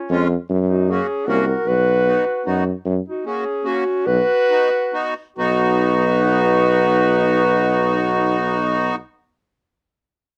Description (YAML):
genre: alpine folk, alpine dance band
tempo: 127-154 BPM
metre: 3/4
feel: straight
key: B major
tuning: A4 = 440 Hz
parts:
  - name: dark clarinet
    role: melody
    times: 0.0-9.0 s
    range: E#4 to B4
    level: -22 LUFS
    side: equal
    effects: none
  - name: mellow trumpet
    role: second line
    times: 0.0-8.9 s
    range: C#4 to F#4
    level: -30 LUFS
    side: equal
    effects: none
  - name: accordion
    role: accompaniment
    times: 0.1-9.0 s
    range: G#3 to F#4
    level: -22 LUFS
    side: equal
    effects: none
  - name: warm tuba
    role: bass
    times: 0.1-9.0 s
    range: B1 to F#2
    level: -22 LUFS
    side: equal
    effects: none
room: light reverb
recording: dark, warm production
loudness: -18 LUFS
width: mono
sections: 0.0-2.9 A section; 2.9-5.4 B section; 5.4-8.2 C section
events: slowing down 2.9-5.4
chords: 0.5 F#; 1.7 B; 2.9 F#; 4.1 B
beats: 0.09 | 0.48 0.87 1.26 | 1.65 2.05 2.45 | 2.86 3.26 3.66 | 4.07 4.49 4.93 | 5.39 5.86 6.33 | 6.79 7.25 7.73